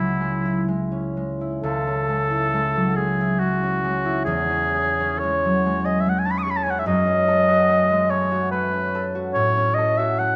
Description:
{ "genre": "classical, romantic duo for oboe and harp", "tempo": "59-75 BPM", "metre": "3/4", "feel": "rubato", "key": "C# minor", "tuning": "A4 = 441 Hz", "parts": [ { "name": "warm oboe", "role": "melody", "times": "0.0-10.4 s", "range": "E4 to D#6", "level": "-23 LUFS", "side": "equal", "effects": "none" }, { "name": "concert harp", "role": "accompaniment", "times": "0.0-10.4 s", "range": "C#2 to A4", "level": "-25 LUFS", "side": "equal", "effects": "none" } ], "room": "wet recital hall reverb, RT60 1.5 s", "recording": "none", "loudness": "-21 LUFS", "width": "mono", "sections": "0.0-1.6 A section; 1.6-10.4 A section", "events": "none", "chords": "0.0 C#m; 4.3 C#m/E; 6.9 F#m; 9.3 F#m/A" }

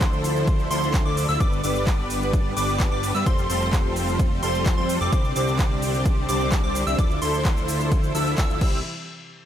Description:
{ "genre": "EDM, festival progressive house", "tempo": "129 BPM", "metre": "4/4", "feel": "straight", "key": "C major", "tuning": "A4 = 442 Hz", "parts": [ { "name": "warm symphonic string section", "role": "sustained chords", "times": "0.0-8.8 s", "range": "C3 to G4", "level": "-33 LUFS", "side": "equal", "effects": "sidechain pumping" }, { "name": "plucky unison lead", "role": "arpeggios", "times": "0.0-8.8 s", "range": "C6 to E6", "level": "-29 LUFS", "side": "equal", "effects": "sidechain pumping, ping-pong delay" }, { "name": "supersaw chords", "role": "riff", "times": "0.0-8.8 s", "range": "F3 to E5", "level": "-27 LUFS", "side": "equal", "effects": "ensemble chorus, sidechain pumping, ping-pong delay" }, { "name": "fat analog bass", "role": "bass", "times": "0.0-8.8 s", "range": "F1 to G2", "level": "-27 LUFS", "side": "equal", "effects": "sidechain pumping" }, { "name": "big-room dance drum kit", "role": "drums", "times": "0.0-8.7 s", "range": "crash cymbal, handclaps, hi-hat, ride cymbal, shaker", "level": "-32 LUFS", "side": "right 1 dB", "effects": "none" }, { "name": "electronic kick drum", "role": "drums", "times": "0.0-8.7 s", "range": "none", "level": "-22 LUFS", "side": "equal", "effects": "none" } ], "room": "digital ambience", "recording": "none", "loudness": "-20 LUFS", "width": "side -10 dB against mid", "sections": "0.0-8.8 A section", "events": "drop 0.0-8.8", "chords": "0.0 Dmadd9; 1.4 G; 3.3 Fadd9; 5.1 Csus2; 7.0 Dmadd9; 8.6 C; 8.8 N.C." }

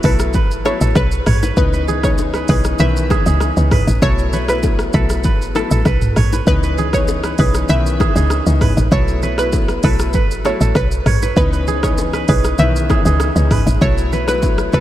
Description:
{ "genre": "afrobeats", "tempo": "98 BPM", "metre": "4/4", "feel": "straight", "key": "C# minor", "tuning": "A4 = 440 Hz", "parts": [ { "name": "analog pluck", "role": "melody", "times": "0.0-14.8 s", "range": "A4 to E5", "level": "-23 LUFS", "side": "equal", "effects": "chorus, tape echo" }, { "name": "clear grand piano", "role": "accompaniment", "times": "0.0-14.8 s", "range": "D#3 to E4", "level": "-23 LUFS", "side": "left 4 dB", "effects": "none" }, { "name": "kora", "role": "riff", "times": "0.0-14.8 s", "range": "G#4 to C#5", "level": "-24 LUFS", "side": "right 8 dB", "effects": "tape echo" }, { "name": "woody log drum bass", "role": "bass", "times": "0.0-14.8 s", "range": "G#1 to C#2", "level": "-17 LUFS", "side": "equal", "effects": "none" }, { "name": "afro-pop drum kit", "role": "drums", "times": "0.0-14.8 s", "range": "hi-hat, kick drum, rim click, shaker, toms", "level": "-18 LUFS", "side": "equal", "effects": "none" }, { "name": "congas and bongos", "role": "percussion", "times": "0.3-14.6 s", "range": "none", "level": "-27 LUFS", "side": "left 4 dB", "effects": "none" } ], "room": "light reverb", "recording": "none", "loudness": "-13 LUFS", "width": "side -13 dB against mid", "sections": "0.0-14.8 A section", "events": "none", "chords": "0.0 B7sus4; 1.6 C#m9; 4.0 B7sus4; 6.5 C#m9; 8.9 B7sus4; 11.4 C#m9; 13.8 B7sus4" }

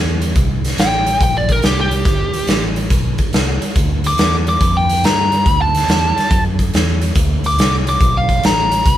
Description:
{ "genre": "electric blues shuffle", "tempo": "141 BPM", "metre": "4/4", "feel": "swing 67% on 8ths", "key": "unclear", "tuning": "A4 = 441 Hz", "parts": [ { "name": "fingered electric bass", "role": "bass", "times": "0.0-9.0 s", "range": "G1 to G2", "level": "-19 LUFS", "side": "equal", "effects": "none" }, { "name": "raw garage drum kit", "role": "drums", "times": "0.2-9.0 s", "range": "hi-hat, kick drum, snare drum", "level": "-16 LUFS", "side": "equal", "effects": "none" }, { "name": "biting lead guitar", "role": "melody", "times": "0.8-9.0 s", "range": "G4 to D6", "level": "-17 LUFS", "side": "equal", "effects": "overdrive" } ], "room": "light reverb", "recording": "band playing live in one room", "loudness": "-13 LUFS", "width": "side -12 dB against mid", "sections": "0.0-9.0 A section", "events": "lead electric guitar solo 0.0-9.0", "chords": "0.0 C7; 2.1 G7; 5.5 D7" }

